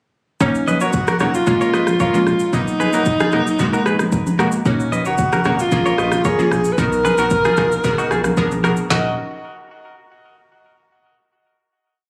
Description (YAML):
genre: afrobeats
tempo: 113 BPM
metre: 4/4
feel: straight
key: Eb minor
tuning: A4 = 442 Hz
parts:
  - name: breathy alto saxophone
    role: melody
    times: 0.4-9.2 s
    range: Db4 to Eb5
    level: -22 LUFS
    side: equal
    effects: none
  - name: glassy wavetable pluck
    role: accompaniment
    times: 0.4-9.1 s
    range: Gb3 to A#4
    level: -24 LUFS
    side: equal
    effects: chorus
  - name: afro-pop drum kit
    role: drums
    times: 0.4-9.0 s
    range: kick drum, rim click, shaker, snare drum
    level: -24 LUFS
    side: equal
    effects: none
  - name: congas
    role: percussion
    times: 0.4-9.2 s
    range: none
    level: -27 LUFS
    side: equal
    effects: none
  - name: direct-recorded clean electric guitar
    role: riff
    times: 0.7-9.2 s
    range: Eb4 to Eb5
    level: -26 LUFS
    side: equal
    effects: spring reverb, delay
  - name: saturated sub bass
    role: bass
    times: 4.7-9.2 s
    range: Eb1 to B1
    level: -28 LUFS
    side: equal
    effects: none
room: digital ambience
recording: recorded on a phone in the room, club reverb, compression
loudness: -17 LUFS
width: mono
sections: 0.4-8.9 verse; 8.9-11.0 final chord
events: none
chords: 0.4 Ebm7; 1.5 Bbm7; 2.5 Bmaj7; 3.6 Abm9; 4.7 Ebm7; 5.7 Bbm7; 6.8 Bmaj7; 7.8 Abm9; 8.4 Bb7b9; 8.9 Ebm7